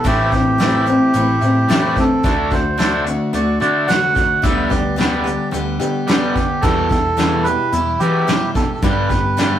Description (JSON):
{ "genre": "folk rock and heartland rock", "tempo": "109 BPM", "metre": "4/4", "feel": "straight", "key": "A dorian", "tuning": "A4 = 440 Hz", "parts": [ { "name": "melodica", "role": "melody", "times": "0.0-9.6 s", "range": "E4 to F#5", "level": "-19 LUFS", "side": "right 3 dB", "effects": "none" }, { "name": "picked steel-string acoustic guitar", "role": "accompaniment", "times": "0.0-9.6 s", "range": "E2 to G4", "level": "-20 LUFS", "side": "left 2 dB", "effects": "none" }, { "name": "raw garage guitar", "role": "riff", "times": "0.0-9.6 s", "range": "E2 to D4", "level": "-21 LUFS", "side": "equal", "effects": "overdrive" }, { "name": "hollow-body short-scale picked electric bass", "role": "bass", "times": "0.0-9.6 s", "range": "A1 to E3", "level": "-23 LUFS", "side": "equal", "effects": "none" }, { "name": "soft brush drum kit", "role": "drums", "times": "0.0-9.5 s", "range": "hi-hat, kick drum, snare drum", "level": "-20 LUFS", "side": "equal", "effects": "none" } ], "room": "moderate studio reverb, RT60 0.5 s", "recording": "rough rehearsal-room recording", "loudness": "-14 LUFS", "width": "side -10 dB against mid", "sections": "0.0-9.6 A section", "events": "none", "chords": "0.0 Am; 2.2 D; 4.4 G/D; 6.6 Em; 8.8 G" }